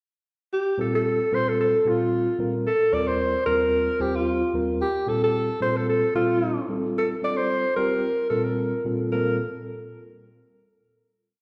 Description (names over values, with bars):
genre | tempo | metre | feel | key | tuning
jazz | 111 BPM | 4/4 | straight | unclear | A4 = 440 Hz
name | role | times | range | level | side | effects
breathy alto saxophone | melody | 0.5-9.4 s | F4 to D5 | -25 LUFS | equal | slapback echo
mellow tine electric piano | accompaniment | 0.8-9.4 s | Eb2 to C5 | -29 LUFS | equal | subtle chorus, slapback echo
room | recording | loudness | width
moderate lush hall reverb, RT60 2.3 s | live gig heard through the venue's PA, recital hall reverb | -24 LUFS | mono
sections
0.5-9.1 A section; 9.1-11.3 final chord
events
none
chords
0.5 Bbsus2; 2.7 Ebadd9; 4.8 Bbsus2; 6.7 Fadd9; 8.0 Bbsus2